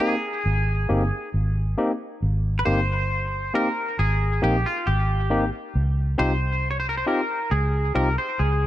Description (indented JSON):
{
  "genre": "lovers rock reggae",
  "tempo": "68 BPM",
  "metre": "4/4",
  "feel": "straight",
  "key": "Ab major",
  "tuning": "A4 = 438 Hz",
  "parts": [
    { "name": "twangy electric guitar", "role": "melody", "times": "0.0-8.7 s", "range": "F4 to Db5", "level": "-26 LUFS", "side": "equal", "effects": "wide subtle chorus, tape echo" },
    { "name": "barky tine electric piano", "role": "accompaniment", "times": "0.0-8.1 s", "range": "Bb3 to G4", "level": "-27 LUFS", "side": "left 1 dB", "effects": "none" },
    { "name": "vintage muted fingered electric bass", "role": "bass", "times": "0.5-8.7 s", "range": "G1 to Db2", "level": "-22 LUFS", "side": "equal", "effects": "none" }
  ],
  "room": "little or no reverb",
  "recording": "none",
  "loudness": "-21 LUFS",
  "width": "side -13 dB against mid",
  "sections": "0.0-8.7 A section",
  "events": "none",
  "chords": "0.0 Abmaj7; 5.7 Dbmaj9#11"
}